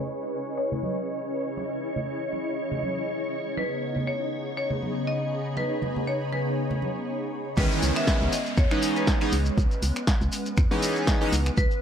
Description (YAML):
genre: deep house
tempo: 120 BPM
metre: 4/4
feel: swing 55% on 16ths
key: C# minor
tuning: A4 = 437 Hz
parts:
  - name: marimba with hard mallets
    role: melody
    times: 0.0-11.8 s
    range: B4 to E5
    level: -32 LUFS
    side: left 2 dB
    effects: tape echo
  - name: hollow soft pad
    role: sustained chords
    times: 0.0-11.8 s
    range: C#3 to D#5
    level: -32 LUFS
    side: equal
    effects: ensemble chorus, sidechain pumping
  - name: granular cloud pad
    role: texture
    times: 0.0-7.6 s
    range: C#4 to B5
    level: -36 LUFS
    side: left 2 dB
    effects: built-in reverb, sidechain pumping
  - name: string machine, violins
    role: texture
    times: 0.0-7.6 s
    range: C#5 to C#6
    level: -37 LUFS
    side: left 1 dB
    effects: ensemble chorus
  - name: congas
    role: percussion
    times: 0.7-6.9 s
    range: none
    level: -33 LUFS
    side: right 3 dB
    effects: sidechain pumping on perc
  - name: chorused polysynth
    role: stabs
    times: 7.6-11.3 s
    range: D#3 to D#4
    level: -26 LUFS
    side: right 1 dB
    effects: analog delay
  - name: organ-like FM bass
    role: bass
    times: 7.6-11.7 s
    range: C#2 to E2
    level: -26 LUFS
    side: equal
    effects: sidechain pumping
  - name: electronic kick drum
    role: drums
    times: 7.6-11.7 s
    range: none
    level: -24 LUFS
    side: equal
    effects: none
  - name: punchy analog drum machine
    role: drums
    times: 7.6-11.8 s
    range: crash cymbal, finger snaps, hi-hat, snare drum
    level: -31 LUFS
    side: equal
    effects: low-pass filter on hats, low-pass filter on cymbals, low-pass filter on snare, low-pass filter on room
  - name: shekere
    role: percussion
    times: 7.6-11.8 s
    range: none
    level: -37 LUFS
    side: left 1 dB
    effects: none
  - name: downlifter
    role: sound effects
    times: 7.6-11.6 s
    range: none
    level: -37 LUFS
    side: equal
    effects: none
room: light reverb, digital ambience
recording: dry, gritty hardware recording, low-pass filter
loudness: -24 LUFS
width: side -8 dB against mid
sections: 0.0-7.6 A section; 7.6-11.8 B section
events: filter sweep on analog synth pad 0.0-7.6; filter sweep 0.0-7.6; drop 7.6-11.8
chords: 0.0 C#m9; 3.6 G#m/C#; 7.6 C#m9